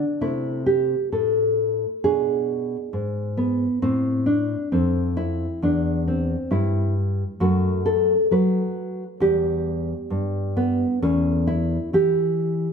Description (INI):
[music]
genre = classical, baroque-style dance for nylon-string guitar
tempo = 66 BPM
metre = 4/4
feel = rubato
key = A minor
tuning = A4 = 440 Hz
[part]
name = nylon-string guitar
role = solo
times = 0.0-12.7 s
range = E2 to B4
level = -20 LUFS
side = equal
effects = none
[sound]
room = wet recital hall reverb, RT60 1.7 s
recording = none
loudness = -20 LUFS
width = side -6 dB against mid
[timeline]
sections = 0.0-12.7 A section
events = none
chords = 0.2 Am/C; 2.0 G#dim; 3.8 A5; 7.4 B5/F#; 9.2 Em; 11.0 A5/E